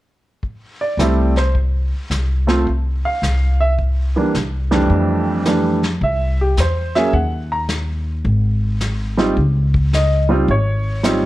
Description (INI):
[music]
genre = jazz piano trio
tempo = 108 BPM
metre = 4/4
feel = swing 67% on 8ths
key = unclear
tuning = A4 = 442 Hz
[part]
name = vintage brush drum kit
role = drums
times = 0.4-11.3 s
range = brushed snare drum, hi-hat, kick drum, snare drum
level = -25 LUFS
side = left 1 dB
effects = none
[part]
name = clear upright piano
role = melody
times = 0.8-11.3 s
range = F2 to Bb5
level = -18 LUFS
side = right 1 dB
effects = none
[part]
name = upright bass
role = bass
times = 1.0-11.3 s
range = Ab1 to F2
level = -18 LUFS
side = equal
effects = none
[sound]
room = light reverb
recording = dark, warm production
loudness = -15 LUFS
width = side -16 dB against mid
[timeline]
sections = 0.4-4.9 A section; 4.9-11.3 B section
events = none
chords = 0.4 C69; 4.9 Fmaj13; 7.1 Ebm; 8.2 N.C.; 9.4 Dbmaj7sus2